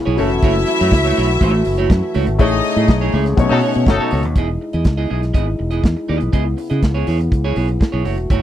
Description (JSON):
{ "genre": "disco", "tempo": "122 BPM", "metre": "4/4", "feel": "straight", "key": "unclear", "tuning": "A4 = 440 Hz", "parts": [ { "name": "warm grand piano", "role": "accompaniment", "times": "0.0-4.4 s", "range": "B2 to C#5", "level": "-22 LUFS", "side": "left 6 dB", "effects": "none" }, { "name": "dark French horn section", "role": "sustained chords", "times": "0.0-8.4 s", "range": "C#3 to G#4", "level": "-23 LUFS", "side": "left 1 dB", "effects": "none" }, { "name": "clean electric guitar", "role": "accompaniment", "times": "0.1-8.4 s", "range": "A3 to D#5", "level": "-23 LUFS", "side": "right 6 dB", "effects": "none" }, { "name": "fingered electric bass", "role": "bass", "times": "0.1-8.4 s", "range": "E1 to C#3", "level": "-18 LUFS", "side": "equal", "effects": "none" }, { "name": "clear symphonic string section", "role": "second line", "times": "0.2-4.1 s", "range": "C#4 to E5", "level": "-21 LUFS", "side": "left 1 dB", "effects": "none" }, { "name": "warm soul drum kit", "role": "drums", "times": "0.2-8.4 s", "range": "hi-hat, kick drum, snare drum", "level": "-14 LUFS", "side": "equal", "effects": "none" }, { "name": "clear horn section", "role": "stabs", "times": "3.5-4.2 s", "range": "F#3 to A4", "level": "-20 LUFS", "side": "left 4 dB", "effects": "none" } ], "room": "little or no reverb", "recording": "dry, close 1970s-style studio recording", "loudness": "-14 LUFS", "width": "side -11 dB against mid", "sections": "0.0-4.4 A section; 4.4-8.4 B section", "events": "band accent 2.4-4.4", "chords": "0.2 F#m7; 2.4 Amaj7; 3.4 B9; 4.4 Emaj7; 6.3 C#m7", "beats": "| 0.43 0.92 1.41 1.90 | 2.39 2.88 3.38 3.87 | 4.36 4.85 5.34 5.84 | 6.33 6.82 7.32 7.81 | 8.30" }